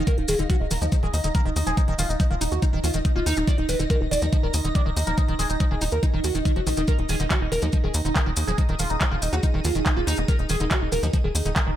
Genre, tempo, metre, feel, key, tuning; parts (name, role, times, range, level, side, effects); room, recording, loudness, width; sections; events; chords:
psychedelic trance; 141 BPM; 4/4; straight; A4 = 440 Hz
swarming drone; sustained chords; 0.0-11.8 s; Eb4 to Eb5; -33 LUFS; right 3 dB; built-in reverb, sidechain pumping
liquid acid bass; riff; 0.0-11.7 s; D3 to Eb4; -32 LUFS; equal; chorus, auto-pan, sidechain pumping, ping-pong delay
tight sequencer bass; bass; 0.0-11.7 s; Eb1 to Eb2; -26 LUFS; equal
overdriven synth lead; melody; 0.1-11.7 s; Eb4 to D5; -28 LUFS; right 1 dB; phaser, cassette tape, sidechain pumping, ping-pong delay
drum and bass drum kit; drums; 0.1-11.6 s; handclaps, hi-hat; -31 LUFS; equal
electronic kick drum; drums; 0.1-11.6 s; -22 LUFS; equal
maracas; percussion; 0.1-11.6 s; -32 LUFS; left 1 dB
little or no reverb; -20 LUFS; side -12 dB against mid
0.0-11.8 A section
0.0 Eb5